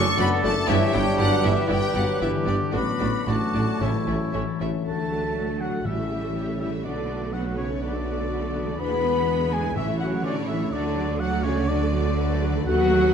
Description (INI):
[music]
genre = classical, dramatic, fast romantic movement for symphony orchestra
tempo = 110-126 BPM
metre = 4/4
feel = rubato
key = D major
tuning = A4 = 440 Hz
[part]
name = rich studio violin section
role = melody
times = 0.0-13.1 s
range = G#4 to C#6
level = -32 LUFS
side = left 4 dB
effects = none
[part]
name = mellow clarinet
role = second line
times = 0.0-4.6 s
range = F#4 to D5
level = -31 LUFS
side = left 2 dB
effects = none
[part]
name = mellow concert flute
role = second line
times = 0.0-13.1 s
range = C#5 to D6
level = -34 LUFS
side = left 2 dB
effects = none
[part]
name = rich symphonic violin section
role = second line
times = 0.0-13.1 s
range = E4 to B5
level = -38 LUFS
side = left 2 dB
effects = none
[part]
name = warm oboe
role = second line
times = 0.0-13.1 s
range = E4 to B5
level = -34 LUFS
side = right 2 dB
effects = none
[part]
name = rich symphonic viola section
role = accompaniment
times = 0.0-13.1 s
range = E3 to B4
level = -32 LUFS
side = right 2 dB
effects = none
[part]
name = mellow French horn section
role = sustained chords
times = 0.0-13.1 s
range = D3 to B4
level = -28 LUFS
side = left 4 dB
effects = none
[part]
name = mellow trombone section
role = sustained chords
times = 0.0-13.1 s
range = C#3 to D4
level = -33 LUFS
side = right 3 dB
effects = none
[part]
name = concert harp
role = arpeggios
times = 0.0-13.1 s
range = F#2 to A5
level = -33 LUFS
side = left 9 dB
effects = none
[part]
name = mellow tuba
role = bass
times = 0.0-13.1 s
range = E1 to D#2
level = -32 LUFS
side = right 4 dB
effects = none
[part]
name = rich symphonic double bass section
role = bass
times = 0.0-13.1 s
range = F#1 to E2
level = -29 LUFS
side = right 3 dB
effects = none
[part]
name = rich symphonic cello section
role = bass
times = 0.2-13.1 s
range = F#2 to B3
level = -32 LUFS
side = right 4 dB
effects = none
[part]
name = timpani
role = percussion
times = 3.8-6.6, 9.8-10.4 s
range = A2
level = -36 LUFS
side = left 1 dB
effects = none
[sound]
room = moderate scoring stage reverb, RT60 1.5 s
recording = none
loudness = -22 LUFS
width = side -7 dB against mid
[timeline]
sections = 0.0-4.9 A section; 4.9-13.1 B section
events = none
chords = 0.0 D/F#; 0.7 Em7/G; 2.7 D/A; 3.8 A; 4.9 D; 5.9 A7; 6.8 Bm7; 8.8 E7; 9.8 A; 10.7 D